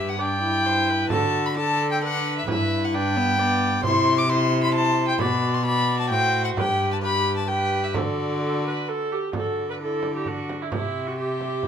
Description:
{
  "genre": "classical, renaissance-style consort dance",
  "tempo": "131 BPM",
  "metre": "3/4",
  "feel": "straight",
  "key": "D mixolydian",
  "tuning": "A4 = 440 Hz",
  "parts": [
    { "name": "warm violin", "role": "melody", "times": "0.0-11.7 s", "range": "D5 to D6", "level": "-25 LUFS", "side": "left 2 dB", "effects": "none" },
    { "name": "rich viola", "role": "second line", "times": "0.0-11.7 s", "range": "E4 to D5", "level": "-28 LUFS", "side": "right 4 dB", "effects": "none" },
    { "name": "warm viola", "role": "accompaniment", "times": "0.0-11.7 s", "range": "B3 to G4", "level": "-28 LUFS", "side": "left 3 dB", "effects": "none" },
    { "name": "rich cello", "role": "bass", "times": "0.0-11.7 s", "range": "G2 to D3", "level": "-27 LUFS", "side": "right 1 dB", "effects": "none" },
    { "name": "frame drum", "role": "percussion", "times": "1.1-11.7 s", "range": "none", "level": "-30 LUFS", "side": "right 4 dB", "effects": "none" }
  ],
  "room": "light reverb",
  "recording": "minimal, uncompressed stereo recording",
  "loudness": "-21 LUFS",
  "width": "side -8 dB against mid",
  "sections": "0.0-9.3 A section; 9.3-11.7 B section",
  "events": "none",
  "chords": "0.0 G; 1.1 D; 2.5 G; 3.8 C; 5.2 Bm; 6.6 G; 7.9 D; 10.7 C",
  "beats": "0.19 0.65 | 1.10 1.56 2.01 | 2.47 2.93 3.38 | 3.83 4.29 4.74 | 5.20 5.65 6.11 | 6.57 7.03 7.48 | 7.95 8.41 8.88 | 9.34 9.80 10.26 | 10.72 11.18 11.63"
}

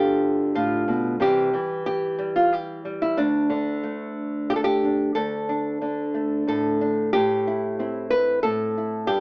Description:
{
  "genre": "folk, solo fingerstyle acoustic guitar",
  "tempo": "92 BPM",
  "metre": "3/4",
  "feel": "straight",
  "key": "D dorian",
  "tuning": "A4 = 440 Hz",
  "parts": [
    { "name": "nylon-string guitar", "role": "solo", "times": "0.0-9.2 s", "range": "D2 to B4", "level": "-21 LUFS", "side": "equal", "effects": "none" }
  ],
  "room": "moderate studio reverb, RT60 0.7 s",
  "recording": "band playing live in one room, small speaker sound",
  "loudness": "-21 LUFS",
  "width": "side -26 dB against mid",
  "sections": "0.0-5.2 A section; 5.2-9.2 B section",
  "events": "none",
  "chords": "0.0 G/D; 1.2 C; 3.2 D5; 7.1 Am7",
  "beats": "0.56 | 1.22 1.87 2.52 | 3.17 3.83 4.50 | 5.16 5.82 6.48 | 7.13 7.79 8.44 | 9.09"
}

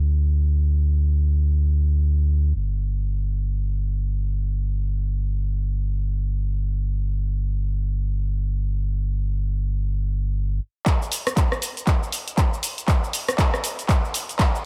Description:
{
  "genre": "deep house",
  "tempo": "119 BPM",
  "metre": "4/4",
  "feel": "swing 60% on 16ths",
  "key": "unclear",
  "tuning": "A4 = 441 Hz",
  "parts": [
    { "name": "sub bass with octave", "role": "bass", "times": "0.0-10.6 s", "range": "G1 to D2", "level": "-23 LUFS", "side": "equal", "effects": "sidechain pumping" },
    { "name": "deep house drum kit", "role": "drums", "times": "10.9-14.6 s", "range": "handclaps, hi-hat, rim click, shaker", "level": "-27 LUFS", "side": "equal", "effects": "low-pass filter on snare, low-pass filter on hats, low-pass filter on perc, low-pass filter on room" },
    { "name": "electronic kick drum", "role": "drums", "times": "10.9-14.5 s", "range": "none", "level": "-22 LUFS", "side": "equal", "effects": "none" }
  ],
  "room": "little or no reverb",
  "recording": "none",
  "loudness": "-23 LUFS",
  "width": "mono",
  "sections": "0.0-10.9 A section; 10.9-14.7 B section",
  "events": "build-up 10.9-14.7; drum fill 10.9-14.7",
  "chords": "none",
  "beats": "0.28 | 0.78 1.28 1.79 2.29 | 2.80 3.30 3.81 4.31 | 4.81 5.32 5.82 6.33 | 6.83 7.33 7.84 8.34 | 8.85 9.35 9.86 10.36 | 10.86 11.37 11.87 12.38 | 12.88 13.38 13.89 14.39"
}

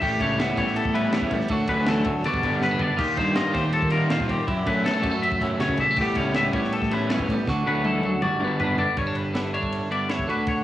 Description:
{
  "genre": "math rock and midwest emo",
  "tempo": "161 BPM",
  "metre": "4/4",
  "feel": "straight",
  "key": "G lydian",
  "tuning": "A4 = 441 Hz",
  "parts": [
    { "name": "twelve-string electric guitar", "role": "accompaniment", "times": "0.0-10.6 s", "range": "E2 to G4", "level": "-26 LUFS", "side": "right 2 dB", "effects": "cassette tape" },
    { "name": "twangy electric guitar", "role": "arpeggios", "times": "0.0-10.6 s", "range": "G4 to E5", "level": "-26 LUFS", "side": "left 3 dB", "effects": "lush chorus, cassette tape" },
    { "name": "fuzz fingered electric bass", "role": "bass", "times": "0.0-10.6 s", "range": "E1 to Eb3", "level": "-28 LUFS", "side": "left 1 dB", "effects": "overdrive" },
    { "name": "crisp fusion drum kit", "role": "drums", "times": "0.0-10.6 s", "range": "crash cymbal, kick drum, ride cymbal, snare drum, toms", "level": "-30 LUFS", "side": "equal", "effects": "cassette tape" },
    { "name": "crunchy overdriven guitar", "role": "riff", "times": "0.2-8.8 s", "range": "C#3 to E4", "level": "-29 LUFS", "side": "equal", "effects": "cassette tape" }
  ],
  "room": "little or no reverb",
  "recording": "home recording on cassette, studio reverb",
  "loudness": "-21 LUFS",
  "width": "side -13 dB against mid",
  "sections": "0.0-9.0 A section; 9.0-10.6 B section",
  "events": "drum fill 2.6-3.0, 7.5-9.0",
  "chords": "0.0 A9; 1.5 Dmaj7; 2.2 Gmaj7; 3.0 Eb69; 4.5 F#m7; 6.0 A9; 7.5 Dmaj7; 8.2 Gmaj7; 9.0 G6",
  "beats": "| 0.01 0.38 0.76 1.13 | 1.50 1.87 2.25 2.62 | 2.99 3.37 3.74 4.11 | 4.48 4.86 5.23 5.60 | 5.98 6.35 6.72 7.10 | 7.47 7.85 8.22 8.60 | 8.97 9.35 9.72 10.10 | 10.47"
}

